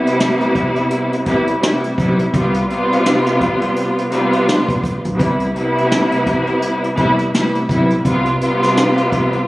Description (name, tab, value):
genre	hip hop, boom-bap hip-hop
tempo	84 BPM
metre	4/4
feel	swing 58% on 16ths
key	C major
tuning	A4 = 436 Hz
part	clear studio string section	accompaniment	0.0-9.5 s	C3 to F4	-15 LUFS	equal	cassette tape, high-pass filter, low-pass filter
part	jazz brush drum kit	drums	0.1-9.5 s	hi-hat, kick drum, rim click, snare drum	-21 LUFS	equal	none
part	upright bass	bass	2.0-8.4 s	B1 to C2	-19 LUFS	equal	none
room	light reverb, studio reverb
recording	recorded on a phone in the room, club reverb, compression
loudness	-14 LUFS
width	side -18 dB against mid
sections	0.0-9.5 A section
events	none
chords	0.0 Cmaj7; 2.3 G7/C; 5.2 Cmaj7; 8.1 G7/C